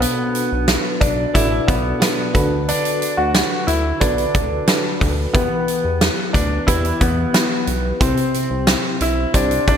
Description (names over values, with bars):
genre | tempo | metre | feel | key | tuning
1980s-style pop | 90 BPM | 4/4 | straight | E minor | A4 = 440 Hz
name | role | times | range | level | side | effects
warm grand piano | melody | 0.0-9.8 s | B3 to F#4 | -21 LUFS | left 1 dB | lush chorus, ping-pong delay
FM electric piano with tremolo | accompaniment | 0.0-9.8 s | B2 to D5 | -23 LUFS | right 1 dB | none
chorused synth bass | bass | 0.0-9.8 s | A1 to E2 | -22 LUFS | equal | none
huge arena drum kit | drums | 0.0-9.8 s | hi-hat, kick drum, snare drum | -19 LUFS | equal | none
room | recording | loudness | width
moderate lush hall reverb, RT60 2.3 s | bright 1980s-style digital production | -16 LUFS | side -8 dB against mid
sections
0.0-9.8 A section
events
none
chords
0.0 Bm7; 2.3 D6; 5.3 Em; 8.0 C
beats
| 0.01 0.68 1.34 2.01 | 2.68 3.35 4.01 4.68 | 5.34 6.01 6.68 7.34 | 8.01 8.68 9.35